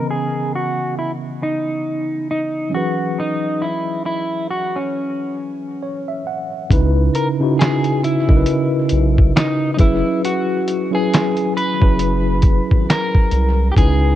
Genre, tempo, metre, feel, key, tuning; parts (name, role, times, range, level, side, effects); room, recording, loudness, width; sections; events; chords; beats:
lo-fi hip hop; 68 BPM; 4/4; swing 58% on 16ths; A4 = 440 Hz
electric guitar at the edge of break-up; melody; 0.0-14.2 s; C#4 to B4; -22 LUFS; equal; low-pass filter, analog delay
mellow tine electric piano; accompaniment; 0.0-14.2 s; C#3 to F#5; -20 LUFS; equal; medium stereo tremolo, low-pass filter
round analog bass; bass; 6.7-14.2 s; F#1 to C#2; -17 LUFS; equal
lo-fi sampler-style drum kit; drums; 6.7-14.0 s; handclaps, hi-hat, kick drum, snare drum; -15 LUFS; equal
light reverb; echo-heavy mix, cassette tape; -16 LUFS; side -12 dB against mid
0.0-6.7 A section; 6.7-14.2 B section
filter sweep 0.0-6.7; tine electric piano fill 5.4-6.7
0.0 C#m9; 2.7 F#9sus4; 6.7 C#m9; 9.8 F#9sus4
0.53 1.41 2.30 | 3.18 4.06 4.94 5.83 | 6.71 7.59 8.47 9.36 | 10.24 11.12 12.00 12.88 | 13.77